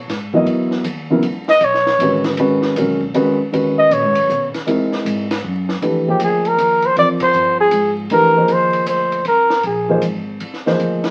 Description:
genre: modal jazz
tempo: 157 BPM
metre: 3/4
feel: swing 64% on 8ths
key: F dorian from 5.8 s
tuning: A4 = 440 Hz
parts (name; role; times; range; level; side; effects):
- upright bass; bass; 0.0-11.1 s; G#1 to C3; -30 LUFS; equal; none
- compact cocktail drum kit; drums; 0.1-11.1 s; hi-hat, kick drum, ride cymbal, snare drum; -30 LUFS; equal; none
- dark baby grand piano; accompaniment; 0.3-11.1 s; C#3 to D#5; -20 LUFS; equal; none
- breathy trumpet; melody; 1.5-10.0 s; G4 to D#5; -16 LUFS; equal; none
room: moderate studio reverb, RT60 0.8 s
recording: very old 78 rpm record, vinyl crackle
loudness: -16 LUFS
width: mono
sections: 0.0-5.8 A section; 5.8-11.1 B section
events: trumpet solo 0.0-5.8; band accent 7.2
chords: 0.0 C#m11 (rootless); 1.2 G#m7; 4.7 C7alt; 5.8 Fm9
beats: | 0.09 0.47 0.85 | 1.23 1.62 2.00 | 2.38 2.76 3.15 | 3.53 3.91 4.29 | 4.67 5.05 5.43 | 5.82 6.20 6.58 | 6.96 7.35 7.73 | 8.11 8.49 8.88 | 9.26 9.64 10.03 | 10.41 10.79

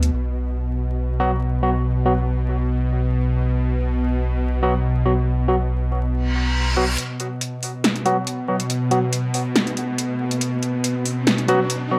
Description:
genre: deep dubstep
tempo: 140 BPM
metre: 4/4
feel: half-time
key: unclear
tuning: A4 = 445 Hz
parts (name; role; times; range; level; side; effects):
- bowed-like drone; sustained chords; 0.0-12.0 s; B2; -26 LUFS; equal; built-in reverb
- soft dub sub bass; bass; 0.0-7.0 s; B1 to D2; -24 LUFS; equal; none
- deep house drum kit; drums; 0.0-0.1, 7.0-11.8 s; hi-hat, snare drum; -24 LUFS; equal; overdrive
- barky tine electric piano; stabs; 1.2-12.0 s; F#3 to F#4; -24 LUFS; equal; low-pass filter, dub echo
- reverse cymbal and riser; sound effects; 6.2-12.0 s; none; -32 LUFS; equal; none
room: moderate digital room reverb, RT60 1.0 s, digital ambience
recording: vinyl crackle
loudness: -21 LUFS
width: mono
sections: 0.1-7.0 A section; 7.0-12.0 B section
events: reverse cymbal 6.2-7.0; build-up 7.0-12.0; filter sweep on tine electric piano 7.0-12.0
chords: 0.1 B5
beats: | 0.13 0.56 0.98 1.41 | 1.84 2.27 2.70 3.13 | 3.56 3.98 4.41 4.84 | 5.27 5.70 6.13 6.55 | 6.98 7.41 7.84 8.27 | 8.70 9.13 9.55 9.98 | 10.41 10.84 11.27 11.70

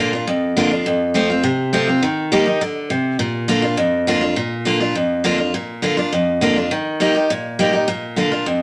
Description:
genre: rock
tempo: 205 BPM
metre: 4/4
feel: straight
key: Bb major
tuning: A4 = 441 Hz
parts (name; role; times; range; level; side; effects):
- picked steel-string acoustic guitar; solo; 0.0-8.6 s; F2 to G4; -18 LUFS; equal; none
room: moderate studio reverb, RT60 0.8 s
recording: none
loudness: -19 LUFS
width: mono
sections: 0.0-5.5 A section; 5.5-8.6 A section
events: none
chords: 0.0 Bb; 0.9 F; 2.0 Eb; 3.2 Bb; 6.7 Eb; 7.9 Bb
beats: 0.27 0.56 | 0.86 1.15 1.44 1.73 | 2.03 2.32 2.61 2.91 | 3.20 3.49 3.78 4.08 | 4.37 4.66 4.96 5.25 | 5.54 5.83 6.12 6.42 | 6.71 7.00 7.29 7.59 | 7.88 8.17 8.46

